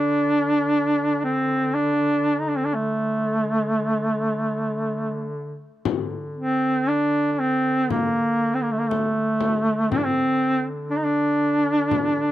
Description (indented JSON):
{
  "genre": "caucasian folk, Caucasian lament",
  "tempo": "59 BPM",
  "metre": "4/4",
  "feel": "rubato",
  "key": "unclear",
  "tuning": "A4 = 439 Hz",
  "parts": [
    { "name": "clear duduk", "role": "melody", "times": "0.0-12.3 s", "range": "A3 to Eb4", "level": "-20 LUFS", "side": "equal", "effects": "none" },
    { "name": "warm duduk", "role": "drone", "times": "0.0-12.3 s", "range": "D3", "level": "-31 LUFS", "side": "left 1 dB", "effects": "none" },
    { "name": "frame drum", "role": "percussion", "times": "5.9-12.1 s", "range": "none", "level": "-27 LUFS", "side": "left 8 dB", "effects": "none" }
  ],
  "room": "studio ambience",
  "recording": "dry, close 1970s-style studio recording",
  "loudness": "-20 LUFS",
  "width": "side -14 dB against mid",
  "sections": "0.0-12.3 A section",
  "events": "none",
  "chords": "none"
}